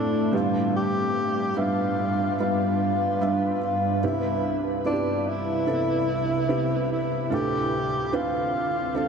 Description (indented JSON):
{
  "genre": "pop",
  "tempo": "73 BPM",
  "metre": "4/4",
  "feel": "straight",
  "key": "C major",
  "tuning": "A4 = 441 Hz",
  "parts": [
    { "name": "warm alto saxophone", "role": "melody", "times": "0.0-9.1 s", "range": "D4 to G4", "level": "-26 LUFS", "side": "left 2 dB", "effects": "ping-pong delay" },
    { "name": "felt-muted upright piano", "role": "accompaniment", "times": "0.0-9.1 s", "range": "C2 to E5", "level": "-27 LUFS", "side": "right 3 dB", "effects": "none" },
    { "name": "ethereal airy pad", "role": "sustained chords", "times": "0.0-9.1 s", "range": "C2 to B4", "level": "-28 LUFS", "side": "right 1 dB", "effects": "ensemble chorus, built-in reverb" }
  ],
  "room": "wet huge ambient reverb, RT60 8.7 s",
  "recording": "dreamy mix soaked in reverb",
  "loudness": "-22 LUFS",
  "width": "side -6 dB against mid",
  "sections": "0.0-9.1 A section",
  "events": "none",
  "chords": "0.3 G; 4.0 Cmaj7; 7.3 Dm7"
}